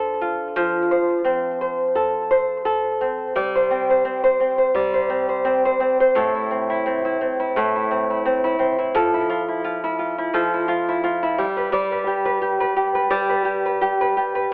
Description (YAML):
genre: pop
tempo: 86 BPM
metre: 4/4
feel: swing 55% on 16ths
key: unclear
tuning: A4 = 435 Hz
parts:
  - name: flamenco guitar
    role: solo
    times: 0.0-14.5 s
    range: A2 to D5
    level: -21 LUFS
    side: equal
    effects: tape echo
room: moderate small room reverb, RT60 0.5 s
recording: worn, warbling old tape, cassette tape, warbly pitch drift, telephone sound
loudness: -21 LUFS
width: mono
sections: 0.0-3.4 A section; 3.4-14.5 B section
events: none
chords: 0.0 Dm7; 3.4 Gsus4; 6.1 Am; 8.9 Fmaj7; 11.4 G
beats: | 0.56 1.26 1.96 2.65 | 3.35 4.05 4.75 5.45 | 6.14 6.84 7.54 8.24 | 8.93 9.63 10.33 11.03 | 11.72 12.42 13.12 13.81 | 14.51